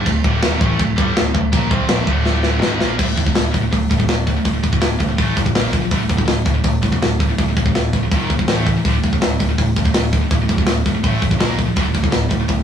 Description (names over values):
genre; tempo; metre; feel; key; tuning
heavy metal; 164 BPM; 4/4; straight; D phrygian; A4 = 440 Hz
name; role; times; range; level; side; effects
tight distorted guitar; riff; 0.0-12.6 s; D2 to C4; -21 LUFS; left 1 dB; distortion
growling fingered electric bass; bass; 0.0-12.6 s; D1 to C2; -21 LUFS; equal; overdrive
tight metal drum kit; drums; 0.1-12.6 s; china cymbal, crash cymbal, hi-hat, kick drum, snare drum; -17 LUFS; equal; none
room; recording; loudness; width
light reverb; rough rehearsal-room recording, tube saturation, small room ambience; -15 LUFS; side -8 dB against mid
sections
0.0-3.0 A section; 3.0-12.6 B section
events
drum fill 2.3-3.0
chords
0.0 Dm; 3.0 D5; 5.2 A5; 5.6 Bb5; 5.9 D5; 8.1 Eb5; 8.5 A5; 8.8 D5; 11.0 A5; 11.4 Bb5; 11.8 D5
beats
| 0.07 0.43 0.80 1.16 | 1.53 1.89 2.26 2.62 | 2.99 3.36 3.72 4.09 | 4.45 4.82 5.19 5.55 | 5.92 6.29 6.65 7.02 | 7.39 7.75 8.12 8.48 | 8.85 9.21 9.58 9.95 | 10.31 10.68 11.04 11.41 | 11.77 12.14 12.50